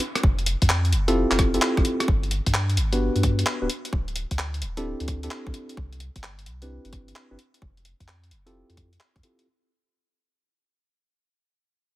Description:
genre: UK garage, two-step garage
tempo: 130 BPM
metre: 4/4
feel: swing 67% on 16ths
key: unclear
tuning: A4 = 439 Hz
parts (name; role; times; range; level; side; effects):
- breakbeat sampler-style drum kit; drums; 0.0-9.4 s; handclaps, hi-hat, rim click; -27 LUFS; equal; none
- saturated sub bass; bass; 0.2-9.2 s; D1 to G2; -26 LUFS; equal; none
- electronic kick drum; drums; 0.2-9.2 s; none; -23 LUFS; equal; none
- tine electric piano; stabs; 1.1-9.5 s; B3 to B4; -26 LUFS; equal; low-pass filter, digital delay
room: little or no reverb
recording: none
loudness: -21 LUFS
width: side -16 dB against mid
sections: 0.0-9.5 A section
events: fade-out 0.0-9.5; filter sweep on tine electric piano 0.0-9.5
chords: 0.2 Fmaj9; 2.1 Gmaj7; 3.9 D9sus4; 5.8 Cmaj9; 7.6 Fmaj9

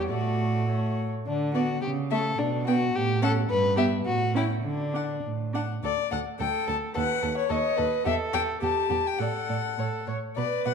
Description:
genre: quick classical-period movement for string quartet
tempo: 100-110 BPM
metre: 2/4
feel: rubato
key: D major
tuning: A4 = 440 Hz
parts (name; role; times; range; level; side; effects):
- warm violin; melody; 0.0-10.7 s; C#5 to A5; -30 LUFS; left 10 dB; none
- rich violin; second line; 0.0-10.7 s; D4 to D5; -31 LUFS; left 3 dB; none
- rich viola; accompaniment; 0.0-10.7 s; G3 to C#5; -30 LUFS; right 2 dB; none
- warm cello; bass; 0.0-10.7 s; D2 to D3; -30 LUFS; right 4 dB; none
room: moderate concert hall reverb, RT60 1.8 s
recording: dark, warm production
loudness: -24 LUFS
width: side -6 dB against mid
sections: 0.0-5.8 A section; 5.8-10.7 A section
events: none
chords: 0.1 D/A; 1.3 Bm/D; 1.8 A/C#; 2.4 G/B; 2.9 F#m/A; 3.5 Em/G; 4.1 A7; 4.6 D; 5.8 D5; 7.0 B7/D#; 8.1 Em; 9.2 D/A; 9.8 A

